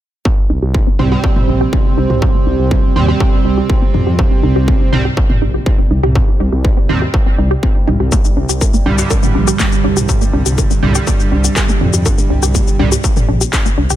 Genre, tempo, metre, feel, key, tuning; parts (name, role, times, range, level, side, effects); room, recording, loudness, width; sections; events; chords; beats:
melodic techno; 122 BPM; 4/4; straight; C minor; A4 = 440 Hz
wide unison pluck; arpeggios; 0.3-14.0 s; Bb3 to C5; -21 LUFS; equal; sidechain pumping, tape echo
analog drone; drone; 3.7-14.0 s; C3 to G3; -28 LUFS; equal
electronic kick drum; drums; 0.3-13.6 s; -14 LUFS; equal; distortion
dark detuned saw bass; bass; 0.5-14.0 s; Bb1 to F2; -16 LUFS; equal; sidechain pumping
sync-sweep polysynth; stabs; 1.0-12.9 s; G2 to C4; -18 LUFS; right 4 dB; chorus, sidechain pumping, tape echo
techno drum kit; drums; 1.0-14.0 s; handclaps, shaker, toms; -20 LUFS; left 1 dB
little or no reverb; -11 LUFS; side -12 dB against mid
0.3-14.0 A section
filter sweep on synth arpeggio sound 0.3-14.0
0.3 Cm; 8.1 Gm
| 0.25 0.74 1.24 1.73 | 2.22 2.71 3.20 3.70 | 4.19 4.68 5.17 5.66 | 6.16 6.65 7.14 7.63 | 8.12 8.61 9.11 9.60 | 10.09 10.58 11.07 11.56 | 12.06 12.55 13.04 13.53